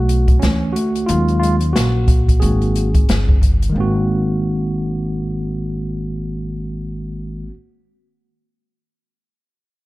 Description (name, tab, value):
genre	hip hop, jazz-hop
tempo	90 BPM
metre	4/4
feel	swing 59% on 16ths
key	unclear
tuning	A4 = 440 Hz
part	bright tine electric piano	accompaniment	0.0-7.5 s	D#3 to G#4	-20 LUFS	equal	medium stereo tremolo
part	upright bass	bass	0.0-7.5 s	G1 to D#2	-20 LUFS	equal	none
part	open jazz drum kit	drums	0.1-3.7 s	hi-hat, kick drum, snare drum	-16 LUFS	equal	none
room	studio reverb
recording	dark, warm production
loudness	-15 LUFS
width	side -19 dB against mid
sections	0.0-3.8 A section; 3.8-6.4 B section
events	tine electric piano solo 0.0-3.8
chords	0.0 A69; 1.1 D#m11; 2.4 G#9